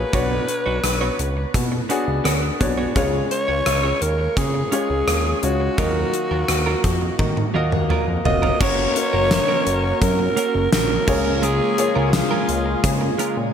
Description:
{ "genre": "1980s-style pop", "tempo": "85 BPM", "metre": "4/4", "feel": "straight", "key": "F# major", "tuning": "A4 = 439 Hz", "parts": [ { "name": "raspy alto saxophone", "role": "melody", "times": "0.0-12.8 s", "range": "E#4 to D#5", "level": "-24 LUFS", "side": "equal", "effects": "digital delay, shimmer reverb" }, { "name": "clear concert grand piano", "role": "accompaniment", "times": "0.0-13.5 s", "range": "B2 to E#5", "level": "-25 LUFS", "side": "left 3 dB", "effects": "shimmer reverb" }, { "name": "fat analog bass", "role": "bass", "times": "0.0-13.5 s", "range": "E#1 to D#3", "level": "-23 LUFS", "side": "equal", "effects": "none" }, { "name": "direct-recorded clean electric guitar", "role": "riff", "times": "0.1-13.4 s", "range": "F#3 to C#5", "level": "-29 LUFS", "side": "right 6 dB", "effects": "lush chorus, shimmer reverb" }, { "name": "gated 80s drum kit", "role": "drums", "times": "0.1-13.4 s", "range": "crash cymbal, hi-hat, kick drum, rim click, snare drum, tambourine, toms", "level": "-22 LUFS", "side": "equal", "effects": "gated reverb" }, { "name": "warm analog pad", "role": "sustained chords", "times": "8.6-13.5 s", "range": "C#3 to F#4", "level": "-27 LUFS", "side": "equal", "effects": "chorus, shimmer reverb" }, { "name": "warm horn section", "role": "stabs", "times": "8.6-13.5 s", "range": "E#3 to A#4", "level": "-29 LUFS", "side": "left 7 dB", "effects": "shimmer reverb" } ], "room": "light reverb, small room ambience", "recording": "none", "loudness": "-17 LUFS", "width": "side -8 dB against mid", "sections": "0.0-8.6 A section; 8.6-13.5 B section", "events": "drum fill 7.2-8.6", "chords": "0.1 Bmadd9; 3.0 C#; 5.8 D#madd9; 8.6 F#; 11.1 C#6", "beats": "| 0.14 0.84 1.55 2.25 | 2.96 3.67 4.37 5.08 | 5.78 6.49 7.19 7.90 | 8.61 9.31 10.02 10.72 | 11.43 12.13 12.84" }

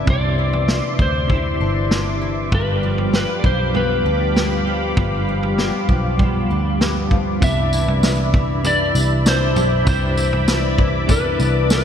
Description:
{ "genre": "dream pop", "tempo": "98 BPM", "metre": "4/4", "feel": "straight", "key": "C major", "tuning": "A4 = 440 Hz", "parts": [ { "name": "electric slide guitar", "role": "melody", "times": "0.0-11.8 s", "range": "B4 to E5", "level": "-23 LUFS", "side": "left 1 dB", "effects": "analog delay" }, { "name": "semi-hollow electric guitar", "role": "accompaniment", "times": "0.0-11.8 s", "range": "G2 to G4", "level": "-25 LUFS", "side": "right 2 dB", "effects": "tremolo, ensemble chorus" }, { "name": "warm analog pad", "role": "sustained chords", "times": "0.0-11.8 s", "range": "G4 to D6", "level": "-25 LUFS", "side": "left 1 dB", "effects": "chorus" }, { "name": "fingerpicked twelve-string acoustic guitar", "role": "arpeggios", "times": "0.0-11.8 s", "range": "G2 to D4", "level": "-26 LUFS", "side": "left 4 dB", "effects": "analog chorus, analog delay" }, { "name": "vintage muted picked electric bass", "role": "bass", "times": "0.0-11.8 s", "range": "G1 to D2", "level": "-21 LUFS", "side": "equal", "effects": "none" }, { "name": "vintage drum kit", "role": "drums", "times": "0.1-11.8 s", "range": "kick drum, snare drum, tambourine, toms", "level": "-21 LUFS", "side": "equal", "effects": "none" } ], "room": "moderate lush hall reverb, RT60 2.2 s", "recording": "dreamy mix soaked in reverb", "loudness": "-16 LUFS", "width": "side -8 dB against mid", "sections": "0.0-7.4 A section; 7.4-11.8 B section", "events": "none", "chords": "0.0 Cmaj9; 2.5 G7; 7.4 Cmaj9", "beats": "| 0.07 0.68 1.30 1.91 | 2.52 3.13 3.75 4.36 | 4.97 5.58 6.20 6.81 | 7.42 8.03 8.64 9.26 | 9.87 10.48 11.09 11.71" }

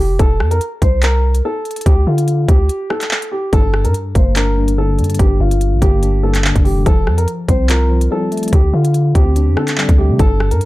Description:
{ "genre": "hip hop, drill", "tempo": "144 BPM", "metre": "4/4", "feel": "half-time", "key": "G minor", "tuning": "A4 = 435 Hz", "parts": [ { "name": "dark concert grand piano", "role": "melody", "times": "0.0-10.6 s", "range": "F4 to C5", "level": "-20 LUFS", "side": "equal", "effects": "low-pass filter" }, { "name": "long sustained 808-style bass", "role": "bass", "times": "0.0-10.6 s", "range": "F1 to D3", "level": "-14 LUFS", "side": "equal", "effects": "none" }, { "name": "drill drum kit", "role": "drums", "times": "0.2-10.7 s", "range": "handclaps, hi-hat, kick drum, rim click", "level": "-15 LUFS", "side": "equal", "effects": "none" }, { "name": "tine electric piano", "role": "accompaniment", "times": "3.5-10.7 s", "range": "G2 to F4", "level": "-20 LUFS", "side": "left 2 dB", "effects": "medium tremolo, low-pass filter" } ], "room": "little or no reverb", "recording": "dark, warm production", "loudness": "-12 LUFS", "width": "side -18 dB against mid", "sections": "0.0-10.7 A section", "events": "break 2.7-3.5", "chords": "0.2 F; 1.9 Dsus4; 3.5 Gm; 6.9 Fadd9; 8.5 D7sus4", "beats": "| 0.19 0.61 1.03 1.44 | 1.86 2.28 2.69 3.11 | 3.53 3.94 4.36 4.78 | 5.19 5.61 6.03 6.44 | 6.86 7.28 7.69 8.11 | 8.53 8.94 9.36 9.78 | 10.19 10.61" }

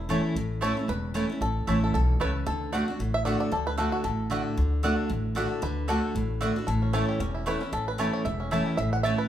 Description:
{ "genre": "bluegrass", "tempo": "228 BPM", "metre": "4/4", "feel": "swing 56% on 8ths", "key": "D major", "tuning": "A4 = 440 Hz", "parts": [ { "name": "bluegrass banjo", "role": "melody", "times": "0.0-9.3 s", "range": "C#4 to F#5", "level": "-31 LUFS", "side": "right 1 dB", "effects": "none" }, { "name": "picked steel-string acoustic guitar", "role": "accompaniment", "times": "0.0-9.3 s", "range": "E2 to F#4", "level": "-28 LUFS", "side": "equal", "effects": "none" }, { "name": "upright bass", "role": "bass", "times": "0.0-9.1 s", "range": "E1 to D2", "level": "-30 LUFS", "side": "equal", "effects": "none" }, { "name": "mandolin", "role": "stabs", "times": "0.1-9.1 s", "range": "A3 to A5", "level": "-33 LUFS", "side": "right 3 dB", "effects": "none" } ], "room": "moderate large studio reverb, RT60 1.1 s", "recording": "band playing live in one room", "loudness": "-25 LUFS", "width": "side -11 dB against mid", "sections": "0.0-9.3 A section", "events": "five-string banjo solo 0.0-9.3", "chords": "0.0 A; 2.5 D; 6.7 A", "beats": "0.10 | 0.36 0.62 0.89 1.15 | 1.41 1.68 1.94 2.20 | 2.47 2.73 2.99 3.26 | 3.52 3.78 4.05 4.31 | 4.57 4.83 5.10 5.36 | 5.62 5.89 6.15 6.42 | 6.68 6.94 7.21 7.47 | 7.73 7.99 8.26 8.52 | 8.78 9.05" }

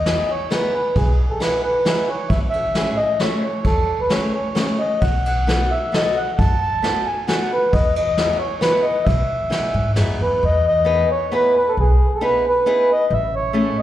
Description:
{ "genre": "musette waltz", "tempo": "134 BPM", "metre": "3/4", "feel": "straight", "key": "E major", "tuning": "A4 = 439 Hz", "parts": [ { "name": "mellow accordion", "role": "melody", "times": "0.0-13.8 s", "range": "G#4 to A5", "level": "-19 LUFS", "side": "equal", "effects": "slapback echo" }, { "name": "upright bass", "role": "bass", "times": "0.0-13.7 s", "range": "A1 to G#2", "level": "-21 LUFS", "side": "equal", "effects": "none" }, { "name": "picked old ladder-braced acoustic guitar", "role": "accompaniment", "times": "0.1-13.8 s", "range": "A3 to B4", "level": "-24 LUFS", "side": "left 2 dB", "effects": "slapback echo" }, { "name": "vintage brush drum kit", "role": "drums", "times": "0.1-10.1 s", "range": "kick drum, ride cymbal, snare drum", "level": "-23 LUFS", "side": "equal", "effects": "none" } ], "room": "light reverb", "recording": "live gig heard through the venue's PA, recital hall reverb", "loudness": "-16 LUFS", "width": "side -12 dB against mid", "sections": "0.0-10.4 A section; 10.4-13.8 A section", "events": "none", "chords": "0.0 Emaj7; 2.3 Amaj7; 5.0 B7; 7.7 Emaj7; 13.1 Amaj7", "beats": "0.05 0.50 | 0.95 1.40 1.85 | 2.30 2.75 3.20 | 3.65 4.11 4.57 | 5.03 5.48 5.94 | 6.39 6.84 7.28 | 7.73 8.17 8.61 | 9.06 9.51 9.97 | 10.43 10.88 11.33 | 11.78 12.22 12.67 | 13.11 13.55" }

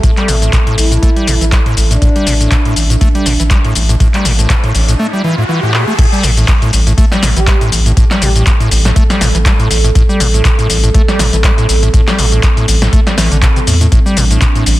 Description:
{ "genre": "acid house", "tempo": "121 BPM", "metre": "4/4", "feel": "swing 56% on 16ths", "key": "A minor", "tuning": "A4 = 438 Hz", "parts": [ { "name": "dark analog pad", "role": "sustained chords", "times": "0.0-14.8 s", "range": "G3 to A4", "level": "-22 LUFS", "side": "right 3 dB", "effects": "chorus, sidechain pumping" }, { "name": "acid bass, square", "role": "riff", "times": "0.0-14.7 s", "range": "A1 to A3", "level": "-16 LUFS", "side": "equal", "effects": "tube saturation, digital delay" }, { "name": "electro analog drum machine", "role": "drums", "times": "0.0-14.8 s", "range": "crash cymbal, handclaps, hi-hat, shaker, snare drum", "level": "-16 LUFS", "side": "left 2 dB", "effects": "none" }, { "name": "electronic kick drum", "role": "drums", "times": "0.0-14.5 s", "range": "none", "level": "-11 LUFS", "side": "equal", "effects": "none" }, { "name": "warbly tape-like pad", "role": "texture", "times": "0.0-5.0 s", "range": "A4 to A5", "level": "-29 LUFS", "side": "right 3 dB", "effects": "chorus, built-in reverb, sidechain pumping" }, { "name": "saturated sub bass", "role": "bass", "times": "0.3-14.8 s", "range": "A1 to E2", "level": "-12 LUFS", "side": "equal", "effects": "sidechain pumping" }, { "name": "breathy flute-like synth lead", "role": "melody", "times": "0.8-2.6, 7.4-8.4 s", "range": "D4 to G4", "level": "-21 LUFS", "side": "equal", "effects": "analog chorus, tape echo" }, { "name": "riser", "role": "sound effects", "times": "3.8-6.0 s", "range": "none", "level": "-22 LUFS", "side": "left 1 dB", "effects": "none" } ], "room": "light reverb", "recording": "dense, heavily limited modern master", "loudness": "-8 LUFS", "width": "side -16 dB against mid", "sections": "0.0-6.0 A section; 6.0-14.8 B section", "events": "riser 3.8-6.0; break 5.0-6.0; drum fill 5.7; drop 6.0-14.8", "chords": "0.0 Am7", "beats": "| 0.04 0.53 1.03 1.52 | 2.02 2.52 3.01 3.51 | 4.00 4.50 4.99 5.49 | 5.99 6.48 6.98 7.47 | 7.97 8.46 8.96 9.46 | 9.95 10.45 10.94 11.44 | 11.94 12.43 12.93 13.42 | 13.92 14.42" }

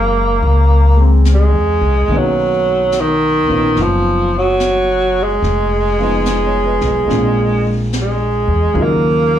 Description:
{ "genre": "jazz ballad", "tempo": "72 BPM", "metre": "4/4", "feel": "swing 66% on 8ths", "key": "unclear", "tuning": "A4 = 440 Hz", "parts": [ { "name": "warm tenor saxophone", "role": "melody", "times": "0.0-9.4 s", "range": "D#3 to Bb3", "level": "-15 LUFS", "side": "right 1 dB", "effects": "slapback echo" }, { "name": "warm baby grand piano", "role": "accompaniment", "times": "0.0-9.4 s", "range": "Db3 to Eb5", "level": "-22 LUFS", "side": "equal", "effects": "slapback echo" }, { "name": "upright bass", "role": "bass", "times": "0.0-9.4 s", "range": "F1 to Fb2", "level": "-15 LUFS", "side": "left 1 dB", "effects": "none" }, { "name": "jazz brush drum kit", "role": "drums", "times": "0.4-9.4 s", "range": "brushed snare drum, hi-hat, snare drum", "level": "-27 LUFS", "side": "right 1 dB", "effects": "none" } ], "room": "light reverb", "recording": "live gig heard through the venue's PA, club reverb", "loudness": "-12 LUFS", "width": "side -10 dB against mid", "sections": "0.0-9.4 A section", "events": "none", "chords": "0.0 Gb9; 2.1 Bmaj9; 5.4 Fm7b5; 7.1 Bb7; 8.8 Ebm9", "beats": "0.43 1.26 | 2.10 2.93 3.76 4.59 | 5.42 6.25 7.08 7.92 | 8.75" }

